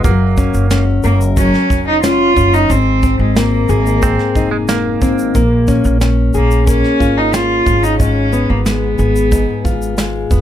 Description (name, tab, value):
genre	acoustic pop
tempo	91 BPM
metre	4/4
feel	straight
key	unclear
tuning	A4 = 440 Hz
part	direct-recorded clean electric guitar	second line	0.0-6.0 s	Ab3 to C4	-21 LUFS	right 8 dB	none
part	fingerpicked plugged-in steel-string acoustic guitar	accompaniment	0.0-10.4 s	Ab2 to Bb4	-16 LUFS	left 4 dB	none
part	upright bass	bass	0.0-10.4 s	F1 to Bb1	-16 LUFS	right 1 dB	none
part	soft brush drum kit	drums	0.0-10.4 s	kick drum, shaker, snare drum	-18 LUFS	right 1 dB	none
part	warm cello	melody	1.0-9.9 s	Ab3 to F4	-16 LUFS	right 2 dB	none
room	little or no reverb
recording	close, detailed microphones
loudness	-11 LUFS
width	side -11 dB against mid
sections	0.0-10.4 A section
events	none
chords	0.0 Gb; 2.7 Abadd9; 5.3 Bbm7; 7.7 Fdim